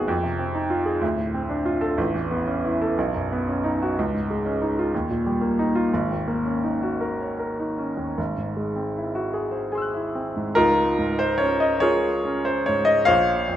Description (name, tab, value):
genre	classical, impressionist solo piano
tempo	47-65 BPM (dotted quarters)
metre	6/8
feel	rubato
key	unclear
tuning	A4 = 441 Hz
part	clear grand piano	solo	0.0-13.6 s	G#1 to Gb6	-21 LUFS	equal	none
room	wet recital hall reverb, RT60 1.6 s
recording	none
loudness	-21 LUFS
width	side -11 dB against mid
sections	0.0-10.6 A section; 10.6-13.6 B section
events	none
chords	0.1 Fm7; 1.0 Dm7; 2.0 Aadd9; 3.0 Cbadd9; 4.0 Dbadd9; 4.9 Ebadd9; 5.9 Ab9sus4; 8.2 Abaug7; 10.6 Db69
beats	| 0.10 1.03 | 1.99 2.98 | 3.97 4.94 | 5.92 7.00 | 8.18 9.35 | 10.57 11.84 | 13.09